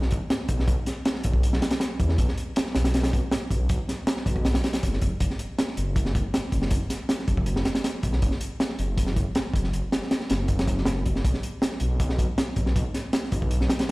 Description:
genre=drum and bass, jungle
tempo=159 BPM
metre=4/4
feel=straight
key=unclear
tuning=A4 = 439 Hz
part: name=dark detuned saw bass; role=bass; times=0.0-13.7 s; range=F#1 to E2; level=-25 LUFS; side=equal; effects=none
part: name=crunchy breakbeat drum kit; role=drums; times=0.0-13.9 s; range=hi-hat, kick drum, snare drum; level=-25 LUFS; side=equal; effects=none
room=little or no reverb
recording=played on a big sound system in a bare room, stone room reverb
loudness=-23 LUFS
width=side -22 dB against mid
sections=0.0-13.9 A section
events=none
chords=none

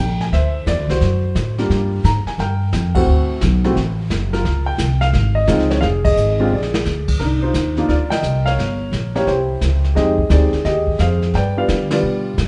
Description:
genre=jazz piano trio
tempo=174 BPM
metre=4/4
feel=swing 65% on 8ths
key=C minor from 7.2 s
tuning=A4 = 440 Hz
part: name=warm upright piano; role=melody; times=0.0-12.5 s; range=G3 to Bb5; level=-22 LUFS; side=equal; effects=none
part: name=upright bass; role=bass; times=0.0-12.5 s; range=F1 to D3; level=-20 LUFS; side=equal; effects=none
part: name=jazz brush drum kit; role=drums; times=0.2-12.5 s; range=brushed snare drum, crash cymbal, hi-hat, kick drum, ride cymbal, snare drum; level=-27 LUFS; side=equal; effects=none
room=wet studio reverb, RT60 0.8 s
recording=heard from further back in the room, nothing above 10.8 kHz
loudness=-17 LUFS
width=mono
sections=0.0-7.2 A section; 7.2-12.5 B section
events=band accent 2.9, 6.0, 8.1, 11.9; drum fill 6.5-6.9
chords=0.3 D7; 1.7 Gm7; 3.1 D9; 4.4 Dbmaj7; 5.8 Fm7; 6.5 Bb7; 7.2 Cm11; 8.6 Gm7b5; 9.3 C; 10.0 Fm9; 11.3 G7

